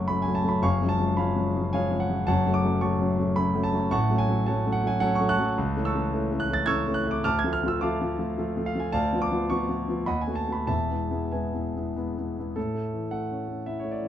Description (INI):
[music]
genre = classical, romantic character piece for solo piano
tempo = 108 BPM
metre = 3/4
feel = rubato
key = F# minor, A major from 5.6 s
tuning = A4 = 440 Hz
[part]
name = warm concert grand piano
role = solo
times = 0.0-14.1 s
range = E1 to A6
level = -24 LUFS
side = equal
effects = none
[sound]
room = light reverb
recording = dark, warm production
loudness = -24 LUFS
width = side -10 dB against mid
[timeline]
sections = 0.0-12.6 A section; 12.6-14.1 B section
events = none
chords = 0.0 F#m; 0.6 C#7/F#; 2.3 F#m; 3.9 F#m/A; 5.6 A/C#; 7.2 Dm; 8.9 Bdim/D; 10.1 B7/D#; 10.7 E; 12.6 A